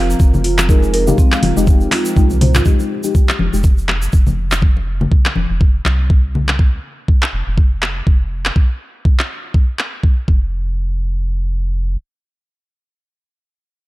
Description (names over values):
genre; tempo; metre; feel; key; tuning
afro house; 122 BPM; 4/4; swing 57% on 16ths; F minor; A4 = 440 Hz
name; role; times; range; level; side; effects
warm analog pad; sustained chords; 0.0-2.6 s; F3 to Bb4; -27 LUFS; right 1 dB; chorus, sidechain pumping
marimba with soft mallets; arpeggios; 0.0-2.6 s; C4 to F5; -21 LUFS; right 2 dB; sidechain pumping, dub echo
round analog bass; bass; 0.0-12.0 s; F1 to C2; -18 LUFS; equal; sidechain pumping
egg shaker; percussion; 0.1-4.6 s; none; -31 LUFS; right 2 dB; none
electronic kick drum; drums; 0.2-10.4 s; none; -11 LUFS; equal; none
congas; percussion; 0.2-6.6 s; none; -22 LUFS; left 3 dB; none
deep house drum kit; drums; 0.4-9.9 s; handclaps, hi-hat, toms; -20 LUFS; equal; none
deep mellow chord stab; stabs; 0.7-3.6 s; Ab3 to Ab4; -21 LUFS; left 4 dB; chorus, phaser, sidechain pumping, dub echo
room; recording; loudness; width
little or no reverb; dark, warm production; -13 LUFS; side -18 dB against mid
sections
0.0-2.7 A section; 2.7-10.5 B section; 10.5-13.9 C section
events
drop 0.0-2.7; drum fill 2.3-2.7; filter sweep on analog synth bass 2.7-8.6; filter sweep on synth stab 2.7-4.6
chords
0.0 Fm7; 10.3 N.C.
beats
0.20 | 0.69 1.18 1.67 2.16 | 2.66 3.15 3.64 4.13 | 4.62 5.12 5.61 6.10 | 6.59 7.08 7.57 8.07 | 8.56 9.05 9.54 10.03 | 10.53 11.02 11.51